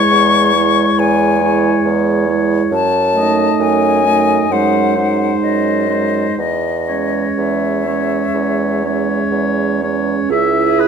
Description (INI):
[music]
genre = classical, slow romantic movement for wind quintet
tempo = 60-70 BPM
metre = 4/4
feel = rubato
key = C# minor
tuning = A4 = 440 Hz
[part]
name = bright silver concert flute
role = melody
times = 0.0-10.9 s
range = D#5 to C#6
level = -18 LUFS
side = left 7 dB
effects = none
[part]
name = warm oboe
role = second line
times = 0.0-10.9 s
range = B4 to E5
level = -21 LUFS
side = left 3 dB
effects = none
[part]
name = mellow French horn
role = accompaniment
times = 0.0-10.9 s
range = G#3 to E4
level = -20 LUFS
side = equal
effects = none
[part]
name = mellow clarinet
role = accompaniment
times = 0.0-10.9 s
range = C#4 to G#4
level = -20 LUFS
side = right 10 dB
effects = none
[part]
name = warm bassoon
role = bass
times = 0.1-10.9 s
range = C#2 to F#2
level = -18 LUFS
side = right 3 dB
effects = none
[sound]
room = moderate concert hall reverb, RT60 2.4 s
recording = close, detailed microphones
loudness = -12 LUFS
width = side -6 dB against mid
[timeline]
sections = 0.0-10.3 A section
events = none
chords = 0.0 C#m/E; 2.7 D#dim/F#; 4.5 G#7/F#; 6.4 C#m/E; 10.3 C#m